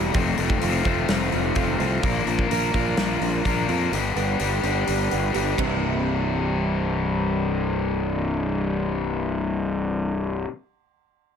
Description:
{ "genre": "quiet-loud alternative rock", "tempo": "127 BPM", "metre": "4/4", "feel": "straight", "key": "C major", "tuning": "A4 = 438 Hz", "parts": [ { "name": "fingerpicked swing-style acoustic guitar", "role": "arpeggios", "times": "0.0-10.5 s", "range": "C2 to Bb4", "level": "-30 LUFS", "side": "right 11 dB", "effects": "none" }, { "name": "distorted electric guitar", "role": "riff", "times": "0.0-10.5 s", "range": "C2 to Bb4", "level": "-25 LUFS", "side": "left 8 dB", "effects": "distortion" }, { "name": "fuzz fingered electric bass", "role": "bass", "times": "0.0-10.4 s", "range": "C1 to F2", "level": "-26 LUFS", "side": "equal", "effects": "overdrive" }, { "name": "big rock drum kit", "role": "drums", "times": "0.1-5.7 s", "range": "hi-hat, kick drum, ride cymbal, snare drum", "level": "-28 LUFS", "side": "equal", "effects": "none" } ], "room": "light reverb", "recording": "none", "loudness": "-21 LUFS", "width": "side -7 dB against mid", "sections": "0.0-5.8 A section; 5.8-9.6 B section", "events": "none", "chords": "0.1 F; 2.0 Bb; 3.9 G; 5.6 C", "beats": "| 0.14 0.61 1.09 1.56 | 2.03 2.50 2.98 3.45 | 3.92 4.39 4.87 5.34 | 5.81 6.29 6.76 7.23 | 7.70 8.17 8.64 9.12" }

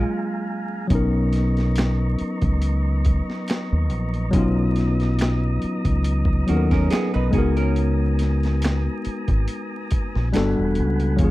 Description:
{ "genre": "R&B, neo-soul", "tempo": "70 BPM", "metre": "4/4", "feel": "swing 54% on 16ths", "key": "unclear", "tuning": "A4 = 440 Hz", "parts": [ { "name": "archtop guitar, miked and amplified", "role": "second line", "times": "0.0-0.9, 6.5-8.8 s", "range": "Ab3 to B4", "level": "-27 LUFS", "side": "right 4 dB", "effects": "none" }, { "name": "tine electric piano", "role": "accompaniment", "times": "0.0-11.3 s", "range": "Gb3 to A#4", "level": "-24 LUFS", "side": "left 2 dB", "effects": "none" }, { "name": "tonewheel organ", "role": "sustained chords", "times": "0.0-11.3 s", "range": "B3 to D#6", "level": "-33 LUFS", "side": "right 2 dB", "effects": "slow rotary speaker, overdrive" }, { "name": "deep dub fingered electric bass", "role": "bass", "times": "0.0-11.3 s", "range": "Fb1 to D#2", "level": "-21 LUFS", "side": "equal", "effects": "none" }, { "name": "boom bap sampler-style drum kit", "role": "drums", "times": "0.9-11.3 s", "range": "finger snaps, hi-hat, kick drum, snare drum", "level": "-24 LUFS", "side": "equal", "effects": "none" } ], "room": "little or no reverb", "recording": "dry, close 1970s-style studio recording, vinyl crackle", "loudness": "-19 LUFS", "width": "side -17 dB against mid", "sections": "0.0-11.3 A section", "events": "break 0.0-0.9", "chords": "0.0 Gbmaj9; 0.9 Bmaj9; 7.3 Db13sus4; 10.3 Gmaj9", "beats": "0.04 | 0.90 1.76 2.62 3.47 | 4.33 5.19 6.04 6.90 | 7.76 8.62 9.47 10.33 | 11.19" }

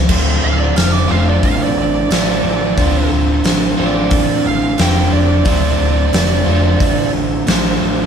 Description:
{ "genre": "blues rock power trio and southern rock", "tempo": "90 BPM", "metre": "4/4", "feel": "straight", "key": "D minor", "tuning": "A4 = 436 Hz", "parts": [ { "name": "overdriven semi-hollow guitar", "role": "riff", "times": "0.0-8.1 s", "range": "D2 to F4", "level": "-17 LUFS", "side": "equal", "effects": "none" }, { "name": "overdriven picked electric bass", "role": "bass", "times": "0.0-8.1 s", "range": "D1 to A1", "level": "-17 LUFS", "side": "left 1 dB", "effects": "none" }, { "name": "huge arena drum kit", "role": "drums", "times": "0.1-7.6 s", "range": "crash cymbal, hi-hat, kick drum, snare drum", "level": "-17 LUFS", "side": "equal", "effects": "none" }, { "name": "bluesy overdriven lead guitar", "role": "second line", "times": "0.4-7.1 s", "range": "D5 to G5", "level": "-20 LUFS", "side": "right 7 dB", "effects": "distortion" } ], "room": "light reverb", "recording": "band playing live in one room", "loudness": "-12 LUFS", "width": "side -7 dB against mid", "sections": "0.1-8.1 A section", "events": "lead electric guitar solo 0.1-8.1", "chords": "0.1 Dm7", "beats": "| 0.11 0.78 1.45 2.12 | 2.79 3.46 4.13 4.80 | 5.47 6.14 6.81 7.48" }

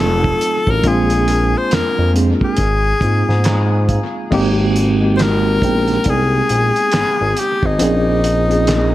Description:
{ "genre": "R&B, neo-soul", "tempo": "69 BPM", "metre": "4/4", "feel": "swing 61% on 16ths", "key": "Ab major", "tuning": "A4 = 437 Hz", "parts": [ { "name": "clear tenor saxophone", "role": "melody", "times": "0.0-8.9 s", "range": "Eb4 to C5", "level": "-18 LUFS", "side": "left 2 dB", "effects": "tape echo" }, { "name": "mellow tine electric piano", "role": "accompaniment", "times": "0.0-8.9 s", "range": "F3 to Bb5", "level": "-19 LUFS", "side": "right 1 dB", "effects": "medium stereo tremolo" }, { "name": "smooth synth bass", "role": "bass", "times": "0.0-8.9 s", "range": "F1 to Ab2", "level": "-17 LUFS", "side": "equal", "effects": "none" }, { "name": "cloth-damped thuddy drum kit", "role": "drums", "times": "0.2-8.9 s", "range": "crash cymbal, handclaps, hi-hat, kick drum, snare drum", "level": "-21 LUFS", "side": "equal", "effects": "tape echo" } ], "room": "light reverb, studio ambience", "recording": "echo-heavy mix", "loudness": "-13 LUFS", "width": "side -15 dB against mid", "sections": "0.0-4.3 A section; 4.3-8.9 B section", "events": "tine electric piano fill 3.0-4.3", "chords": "0.0 F7b9; 0.8 Bb7; 2.6 Ab69; 4.3 Abmaj9; 7.8 Bbm11", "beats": "| 0.84 1.71 2.58 3.45 | 4.32 5.19 6.06 6.93 | 7.80 8.67" }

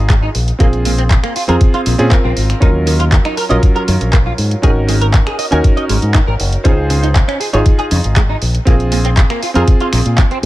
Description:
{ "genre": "nu-disco, nu disco", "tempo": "119 BPM", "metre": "4/4", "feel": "straight", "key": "unclear", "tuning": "A4 = 440 Hz", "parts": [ { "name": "warm electric grand piano", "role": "accompaniment", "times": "0.0-10.5 s", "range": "Gb3 to C5", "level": "-18 LUFS", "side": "right 1 dB", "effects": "sidechain pumping, tape echo" }, { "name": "fingered electric bass with an envelope filter", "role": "bass", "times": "0.0-10.5 s", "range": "Gb1 to Bb2", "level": "-15 LUFS", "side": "equal", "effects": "sidechain pumping" }, { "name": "direct-recorded clean electric guitar", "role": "riff", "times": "0.1-10.4 s", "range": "Bb2 to Ab5", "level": "-21 LUFS", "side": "right 1 dB", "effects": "ensemble chorus, tape echo" }, { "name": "electronic kick drum", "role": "drums", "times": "0.1-10.3 s", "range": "none", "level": "-11 LUFS", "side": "equal", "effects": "small room ambience" }, { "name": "pop drum kit", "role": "drums", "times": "0.1-10.5 s", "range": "finger snaps, handclaps, hi-hat", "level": "-21 LUFS", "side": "equal", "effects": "small room ambience" } ], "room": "little or no reverb", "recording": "none", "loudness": "-10 LUFS", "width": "side -16 dB against mid", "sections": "0.0-10.5 A section", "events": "none", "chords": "0.3 Bb7sus2; 2.6 Ebm7; 4.6 Ab7sus4; 6.7 Dbmaj7; 8.4 Bbsus2", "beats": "0.10 | 0.60 1.10 1.61 2.11 | 2.62 3.12 3.63 4.13 | 4.63 5.14 5.64 6.15 | 6.65 7.16 7.66 8.16 | 8.67 9.17 9.68 10.18" }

